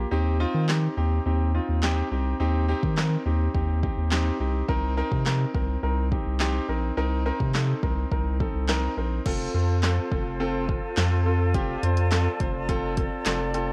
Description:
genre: dance-pop.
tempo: 105 BPM.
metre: 4/4.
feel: straight.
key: unclear.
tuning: A4 = 445 Hz.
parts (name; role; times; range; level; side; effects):
warm grand piano; accompaniment; 0.0-13.7 s; C4 to C5; -31 LUFS; equal; sidechain pumping.
round analog bass; bass; 0.0-13.7 s; F1 to Eb3; -27 LUFS; equal; sidechain pumping.
deep house drum kit; drums; 0.7-13.7 s; crash cymbal, handclaps, hi-hat, kick drum, snare drum; -31 LUFS; equal; none.
bright small flute group; sustained chords; 9.3-13.7 s; F4 to A5; -36 LUFS; equal; sidechain pumping.
room: digital ambience.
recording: none.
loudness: -25 LUFS.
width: mono.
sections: 0.0-9.3 A section; 9.3-13.7 B section.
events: none.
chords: 0.1 Eb6; 4.7 Cm7; 9.3 F.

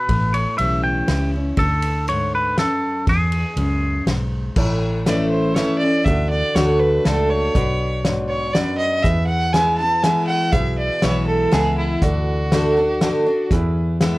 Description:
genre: honky-tonk and classic country.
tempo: 121 BPM.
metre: 3/4.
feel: straight.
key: A major.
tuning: A4 = 445 Hz.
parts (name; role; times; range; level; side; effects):
twangy electric guitar; melody; 0.0-4.0 s; G#4 to G5; -21 LUFS; equal; none.
picked steel-string acoustic guitar; accompaniment; 0.0-14.2 s; E2 to F#4; -22 LUFS; left 1 dB; none.
vintage muted fingered electric bass; bass; 0.1-14.2 s; A1 to E2; -22 LUFS; equal; none.
natural country drum kit; drums; 0.1-14.1 s; crash cymbal, hi-hat, kick drum, ride cymbal, snare drum; -22 LUFS; equal; none.
clear concert grand piano; accompaniment; 4.6-14.2 s; D4 to A5; -28 LUFS; equal; none.
clear fiddle; second line; 5.1-13.5 s; E4 to A5; -22 LUFS; right 1 dB; none.
room: light reverb.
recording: worn, warbling old tape, cassette tape, warbly pitch drift.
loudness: -16 LUFS.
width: side -20 dB against mid.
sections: 0.0-4.6 A section; 4.6-14.2 B section.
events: fiddle solo 4.6-14.2; grand piano fill 12.5-13.5.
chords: 0.1 A7; 1.6 D; 3.1 E; 4.6 A; 6.1 D; 7.6 Bm; 9.0 E; 12.0 D; 13.5 E.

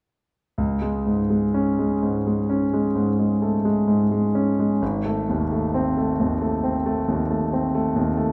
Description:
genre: classical, romantic nocturne for solo piano.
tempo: 40-46 BPM (dotted quarters).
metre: 9/8.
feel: rubato.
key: unclear.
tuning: A4 = 440 Hz.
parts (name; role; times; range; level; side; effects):
warm concert grand piano; solo; 0.6-8.3 s; G#1 to C#4; -22 LUFS; equal; none.
room: wet recital hall reverb, RT60 1.4 s.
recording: none.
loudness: -22 LUFS.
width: mono.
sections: 0.6-8.3 A section.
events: none.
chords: 0.6 C#5; 4.8 G#.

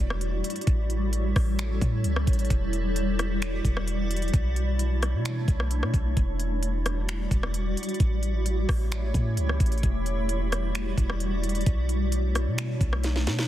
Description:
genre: hip hop, atmospheric cloud-rap.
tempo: 131 BPM.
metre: 4/4.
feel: half-time.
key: E dorian.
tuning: A4 = 443 Hz.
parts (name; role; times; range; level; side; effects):
granular cloud pad; sustained chords; 0.0-13.5 s; G3 to D5; -31 LUFS; equal; built-in reverb, sidechain pumping.
warm 808-style bass; bass; 0.0-13.5 s; E1 to B2; -27 LUFS; equal; none.
trap drum kit; drums; 0.1-13.5 s; finger snaps, hi-hat, kick drum, rim click, snare drum; -27 LUFS; equal; soft clipping on snare.
room: little or no reverb.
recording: dense, heavily limited modern master.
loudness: -24 LUFS.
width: side -13 dB against mid.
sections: 0.0-13.5 A section.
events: drum fill 13.0-13.5.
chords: 0.0 Em9; 0.7 A7; 2.5 Em9; 4.3 Bm11; 6.2 Em9; 8.0 A7; 9.8 Em9; 11.7 Bm11.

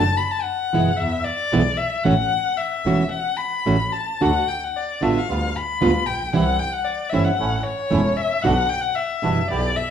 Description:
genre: tango.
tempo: 113 BPM.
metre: 4/4.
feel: rubato.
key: D major.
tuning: A4 = 443 Hz.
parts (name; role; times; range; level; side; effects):
rich violin; second line; 0.0-9.9 s; C#5 to B5; -22 LUFS; left 5 dB; none.
nylon-string guitar; accompaniment; 0.0-9.4 s; B2 to F#4; -21 LUFS; right 3 dB; none.
clear double bass; bass; 0.0-9.7 s; E1 to E2; -25 LUFS; right 1 dB; none.
bandoneon; stabs; 4.2-9.7 s; G3 to G4; -28 LUFS; right 3 dB; none.
room: wet large studio reverb, RT60 0.9 s.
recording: band playing live in one room.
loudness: -19 LUFS.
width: side -8 dB against mid.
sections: 0.0-9.9 A section.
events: violin solo 0.0-9.9.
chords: 0.0 D/F# (rootless); 1.0 E5; 2.1 A6; 4.2 D; 5.3 G7/D; 6.3 C; 7.4 A; 8.4 Bm.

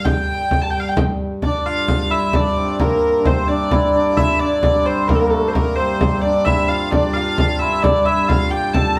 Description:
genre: medieval dance.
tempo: 87 BPM (dotted quarters).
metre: 6/8.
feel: straight.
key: G dorian.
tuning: A4 = 440 Hz.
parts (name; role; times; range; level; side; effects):
rich hurdy-gurdy; melody; 0.0-9.0 s; A4 to Bb5; -21 LUFS; equal; none.
pedal harmonium; drone; 0.0-9.0 s; G2; -28 LUFS; equal; none.
frame drum; percussion; 0.1-9.0 s; none; -22 LUFS; equal; none.
hammered dulcimer; second line; 1.4-9.0 s; A3 to A4; -24 LUFS; equal; none.
room: wet studio reverb, RT60 0.8 s.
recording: band playing live in one room.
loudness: -17 LUFS.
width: mono.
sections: 0.0-1.4 A section; 1.4-9.0 A section.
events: none.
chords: none.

